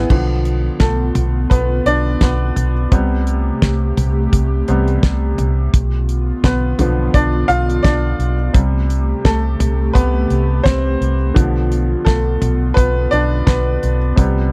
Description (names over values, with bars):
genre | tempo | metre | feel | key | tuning
piano-driven pop | 85 BPM | 4/4 | swing 56% on 16ths | unclear | A4 = 445 Hz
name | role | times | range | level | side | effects
bright upright piano | accompaniment | 0.0-14.5 s | C3 to F5 | -22 LUFS | equal | none
vintage muted fingered electric bass | bass | 0.0-14.5 s | B1 to C2 | -20 LUFS | equal | none
airy breathy pad | sustained chords | 0.1-14.5 s | C3 to G4 | -27 LUFS | equal | chorus
damped 70s drum kit | drums | 0.1-14.4 s | crash cymbal, hi-hat, kick drum, snare drum, toms | -17 LUFS | equal | none
room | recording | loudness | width
little or no reverb | dry, close 1970s-style studio recording | -16 LUFS | mono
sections
0.1-14.5 A section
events
upright piano solo 0.1-14.5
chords
0.1 Bdim; 2.9 Am7/C; 5.7 Bdim; 8.5 Am7/C; 11.4 Bdim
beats
| 0.10 0.81 1.51 2.21 | 2.92 3.62 4.32 5.03 | 5.73 6.43 7.14 7.84 | 8.54 9.25 9.95 10.65 | 11.36 12.06 12.77 13.47 | 14.17